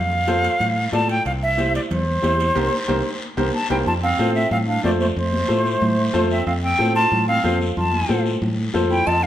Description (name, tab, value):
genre	latin, cumbia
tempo	184 BPM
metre	4/4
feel	straight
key	F major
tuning	A4 = 443 Hz
part	silver concert flute	melody	0.0-9.3 s	C5 to A5	-21 LUFS	equal	none
part	fingered electric bass	bass	0.0-9.3 s	C2 to A2	-23 LUFS	equal	none
part	bright upright piano	accompaniment	0.3-9.0 s	E4 to D5	-25 LUFS	left 2 dB	none
part	congas	percussion	0.3-8.9 s	none	-28 LUFS	left 1 dB	none
part	guiro	percussion	0.3-9.3 s	none	-34 LUFS	left 3 dB	none
part	timbales and cowbell	percussion	0.3-3.8, 9.1-9.2 s	none	-33 LUFS	right 6 dB	none
part	growling clarinet	second line	3.7-9.3 s	A3 to F4	-27 LUFS	right 5 dB	none
room	wet large studio reverb, RT60 1.2 s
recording	none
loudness	-17 LUFS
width	side -12 dB against mid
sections	0.0-3.9 A section; 3.9-9.3 B section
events	band accent 2.6-3.9; drum fill 2.9-3.9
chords	0.0 F; 1.3 C7; 3.9 F